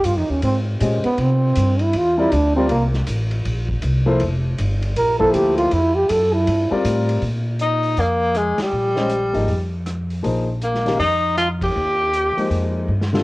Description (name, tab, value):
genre	modal jazz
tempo	159 BPM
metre	4/4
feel	swing 64% on 8ths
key	unclear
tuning	A4 = 440 Hz
part	breathy trombone	second line	0.0-6.7 s	Bb3 to Bb4	-18 LUFS	right 1 dB	cassette tape
part	upright bass	bass	0.0-13.2 s	F1 to C3	-21 LUFS	equal	none
part	vintage drum kit	drums	0.0-13.2 s	hi-hat, kick drum, ride cymbal, rim click, snare drum	-31 LUFS	equal	cassette tape
part	warm grand piano	accompaniment	0.8-13.2 s	D3 to Eb5	-22 LUFS	left 2 dB	cassette tape
part	clear tenor saxophone	melody	7.6-12.7 s	G3 to G4	-19 LUFS	left 1 dB	cassette tape
room	light reverb, small room ambience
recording	home recording on cassette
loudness	-17 LUFS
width	side -20 dB against mid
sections	0.0-7.2 A section; 7.2-13.2 B section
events	trombone solo 0.0-7.2; band accent 8.5, 11.6; drum fill 12.9-13.2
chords	0.0 Bb13sus4; 1.2 C13sus4; 7.2 Bb13sus4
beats	0.05 0.43 0.81 | 1.19 1.57 1.94 2.32 | 2.70 3.08 3.46 3.83 | 4.21 4.59 4.96 5.34 | 5.72 6.09 6.47 6.85 | 7.22 7.60 7.98 8.36 | 8.73 9.11 9.49 9.87 | 10.24 10.62 11.00 11.38 | 11.76 12.13 12.51 12.89